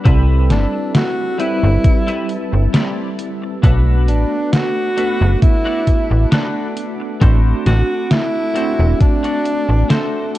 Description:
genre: vaporwave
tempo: 67 BPM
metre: 4/4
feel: straight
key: B phrygian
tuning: A4 = 440 Hz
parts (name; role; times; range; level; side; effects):
- bell-like tine electric piano; accompaniment; 0.0-10.4 s; G3 to B5; -22 LUFS; equal; medium stereo tremolo, lush chorus
- lush unison pad; sustained chords; 0.0-10.4 s; G3 to D6; -34 LUFS; equal; chorus, vintage 12-bit sampler grit
- clean electric guitar; riff; 0.0-10.2 s; C4 to D5; -29 LUFS; left 2 dB; analog chorus, tape echo
- slap-like FM bass; bass; 0.1-9.8 s; E1 to C2; -13 LUFS; equal; none
- detuned 8-bit digital drum machine; drums; 0.1-10.4 s; hi-hat, snare drum; -17 LUFS; equal; small room reverb
- electronic kick drum; drums; 0.1-9.2 s; none; -13 LUFS; equal; small room reverb
- breathy tenor saxophone; melody; 0.5-10.4 s; A3 to F#4; -21 LUFS; equal; tape echo
room: digital ambience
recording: dark, warm production, cassette tape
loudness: -13 LUFS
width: side -15 dB against mid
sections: 0.0-10.4 A section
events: none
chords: 0.1 Cmaj7; 3.6 Bm7; 7.2 D7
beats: | 0.05 0.95 1.84 2.74 | 3.63 4.53 5.42 6.32 | 7.22 8.11 9.01 9.90

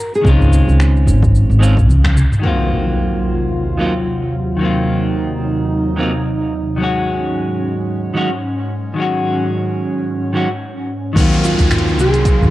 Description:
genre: sunset chillout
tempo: 110 BPM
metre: 4/4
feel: swing 57% on 16ths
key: Eb dorian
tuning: A4 = 439 Hz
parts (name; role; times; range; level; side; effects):
- nylon-string guitar; melody; 0.0-1.9, 11.4-12.5 s; Eb4 to Bb4; -20 LUFS; left 1 dB; cassette tape, analog delay
- smooth R&B drum kit; drums; 0.1-2.4, 11.2-12.5 s; cabasa, finger snaps, hi-hat, toms; -20 LUFS; equal; none
- clean electric guitar; accompaniment; 0.2-12.5 s; Eb3 to Gb4; -19 LUFS; moving between left 3 dB and right 4 dB; auto-pan, cassette tape, analog delay
- upright bass; bass; 0.2-2.2, 11.2-12.5 s; Ab1 to Eb2; -12 LUFS; equal; none
- electronic kick drum; drums; 0.2-2.1, 11.2-12.4 s; none; -17 LUFS; equal; overdrive
- airy breathy pad; sustained chords; 2.8-12.5 s; Eb2 to C6; -20 LUFS; equal; chorus, cassette tape
- impact and downlifter; sound effects; 2.4-4.6, 11.2-12.5 s; none; -22 LUFS; equal; none
room: moderate spring reverb, RT60 1.6 s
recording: home recording on cassette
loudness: -13 LUFS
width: side -16 dB against mid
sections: 0.0-2.4 A section; 2.4-11.2 B section; 11.2-12.5 C section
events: drum fill 1.9-2.4; band accent 2.0; impact 2.4-4.6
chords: 0.3 Dbmaj9; 2.4 Ebm69; 6.8 Ab7sus4; 11.2 Ebm69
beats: | 0.25 0.80 1.34 1.89 | 2.43 2.98 3.52 4.07 | 4.62 5.16 5.71 6.25 | 6.80 7.34 7.89 8.43 | 8.98 9.52 10.07 10.62 | 11.16 11.71 12.25

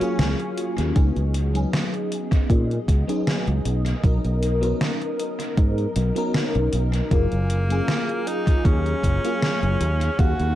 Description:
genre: vaporwave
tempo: 78 BPM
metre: 4/4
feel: swing 53% on 16ths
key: F# major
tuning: A4 = 439 Hz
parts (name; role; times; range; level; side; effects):
- bright tenor saxophone; melody; 0.0-0.5, 7.1-10.6 s; A#3 to F#4; -29 LUFS; equal; tape echo
- FM electric piano with soft pad layer; accompaniment; 0.0-10.6 s; F#3 to E#5; -26 LUFS; left 1 dB; phaser, ensemble chorus, tape echo
- soft string machine; sustained chords; 0.0-10.6 s; F#3 to C#6; -35 LUFS; equal; ensemble chorus, vintage 12-bit sampler grit
- fretless electric bass; bass; 0.0-10.6 s; F#1 to A#2; -22 LUFS; equal; ensemble chorus
- gated 80s digital drum machine; drums; 0.0-10.5 s; hi-hat, snare drum; -28 LUFS; equal; gated reverb, gated reverb snare, overdrive, tape echo
- electronic kick drum; drums; 1.0-10.4 s; none; -19 LUFS; equal; overdrive
room: light reverb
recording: echo-heavy mix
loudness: -20 LUFS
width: side -13 dB against mid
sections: 0.0-10.6 A section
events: none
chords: 0.0 D#m11; 1.0 C#9sus4; 3.7 Bmaj7; 7.1 F#maj9; 9.8 D#m11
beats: 0.19 | 0.96 1.73 2.50 3.27 | 4.04 4.81 5.58 6.34 | 7.11 7.88 8.65 9.42 | 10.19

